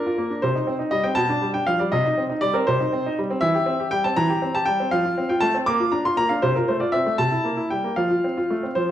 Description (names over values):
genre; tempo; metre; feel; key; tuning
classical-period piano sonatina; 80 BPM (dotted quarters); 6/8; straight; F major from 3.4 s; A4 = 440 Hz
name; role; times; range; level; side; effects
clear baby grand piano; solo; 0.0-8.9 s; B2 to D6; -20 LUFS; equal; none
room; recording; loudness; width
wet recital hall reverb, RT60 1.4 s; dark, warm production; -20 LUFS; side -11 dB against mid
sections
0.0-8.9 A section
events
none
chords
0.4 Cm; 1.2 G7/B; 1.9 Cm; 3.4 C/E; 4.9 F; 5.7 Bb; 6.4 F/C; 7.2 C7; 8.0 F